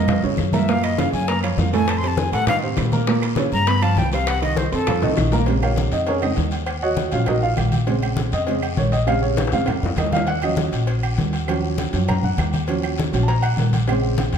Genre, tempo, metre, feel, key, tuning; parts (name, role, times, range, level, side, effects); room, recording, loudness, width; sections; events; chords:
Afro-Cuban jazz; 200 BPM; 4/4; straight; Bb minor; A4 = 440 Hz
breathy bright concert flute; melody; 0.0-5.1 s; A4 to C6; -24 LUFS; left 2 dB; slapback echo
warm upright piano; accompaniment; 0.0-14.3 s; A2 to C6; -23 LUFS; right 3 dB
upright bass; bass; 0.0-14.4 s; Bb1 to Bb2; -22 LUFS; left 1 dB
bongos and cowbell; percussion; 0.1-14.4 s; -31 LUFS; left 7 dB
claves; percussion; 0.1-14.0 s; -38 LUFS; right 7 dB
congas; percussion; 0.1-14.4 s; -27 LUFS; left 2 dB
guiro; percussion; 0.1-14.4 s; -37 LUFS; left 9 dB
timbales and agogo bells; percussion; 0.1-14.4 s; -29 LUFS; right 6 dB
wet large studio reverb, RT60 1.3 s; -18 LUFS; side -7 dB against mid
0.0-5.5 A section; 5.5-14.4 A section
drum fill 0.0-0.7, 5.0-5.5, 9.4-10.3; flute solo 0.0-5.5; upright piano solo 5.5-14.4
0.0 Bbm; 0.7 Gbmaj7; 1.9 F7; 3.1 Bbm; 3.7 G7; 4.3 Cdim7; 4.9 F7; 5.5 Bbm7; 6.7 Ebm7; 7.9 Bbm7; 10.3 Ebm7